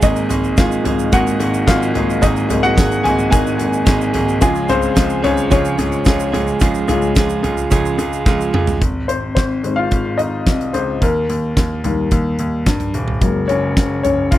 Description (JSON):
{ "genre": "piano-driven pop", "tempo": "109 BPM", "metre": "4/4", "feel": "straight", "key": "unclear", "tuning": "A4 = 441 Hz", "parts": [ { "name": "warm baby grand piano", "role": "accompaniment", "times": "0.0-14.4 s", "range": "Eb3 to Ab5", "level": "-19 LUFS", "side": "left 4 dB", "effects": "none" }, { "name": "direct-recorded clean electric guitar", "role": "riff", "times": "0.0-8.8 s", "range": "Db3 to Ab4", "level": "-20 LUFS", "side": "right 6 dB", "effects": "none" }, { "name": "clear baby grand piano", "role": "bass", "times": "0.0-14.4 s", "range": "Eb1 to G2", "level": "-20 LUFS", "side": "left 1 dB", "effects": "none" }, { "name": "huge arena drum kit", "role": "drums", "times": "0.0-14.4 s", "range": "hi-hat, kick drum, snare drum, toms", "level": "-18 LUFS", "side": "equal", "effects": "none" }, { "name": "tube shaker", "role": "percussion", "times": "0.0-8.8 s", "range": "none", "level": "-34 LUFS", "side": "right 16 dB", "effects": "none" } ], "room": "light reverb", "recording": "dry, close 1970s-style studio recording", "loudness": "-14 LUFS", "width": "side -14 dB against mid", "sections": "0.0-8.8 A section; 8.8-14.4 B section", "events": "grand piano solo 0.0-8.8, 8.8-14.4; drum fill 8.3-8.8", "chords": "0.0 Absus2; 4.4 Db; 8.8 Ab; 11.0 Eb; 13.2 Gbadd9", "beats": "| 0.03 0.58 1.13 1.68 | 2.22 2.77 3.32 3.87 | 4.42 4.97 5.52 6.07 | 6.62 7.17 7.72 8.27 | 8.81 9.37 9.92 10.47 | 11.02 11.57 12.12 12.67 | 13.22 13.77 14.32" }